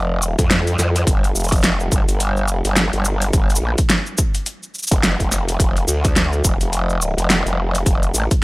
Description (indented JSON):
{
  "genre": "glitch hop",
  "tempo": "106 BPM",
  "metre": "4/4",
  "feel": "swing 59% on 16ths",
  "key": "G minor",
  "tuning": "A4 = 437 Hz",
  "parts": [
    { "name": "growl bass", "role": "bass", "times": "0.0-8.3 s", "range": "F1 to F2", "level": "-19 LUFS", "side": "equal", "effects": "chorus, tube saturation" },
    { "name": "dubstep drum kit", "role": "drums", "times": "0.2-8.4 s", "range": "hi-hat, shaker, snare drum", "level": "-20 LUFS", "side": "equal", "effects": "studio reverb" },
    { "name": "electronic kick drum", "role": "drums", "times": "0.4-8.4 s", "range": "none", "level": "-18 LUFS", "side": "equal", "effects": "studio reverb" }
  ],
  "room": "little or no reverb",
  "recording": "dry, gritty hardware recording",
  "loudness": "-15 LUFS",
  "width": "side -22 dB against mid",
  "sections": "0.0-8.4 A section",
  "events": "none",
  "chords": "none"
}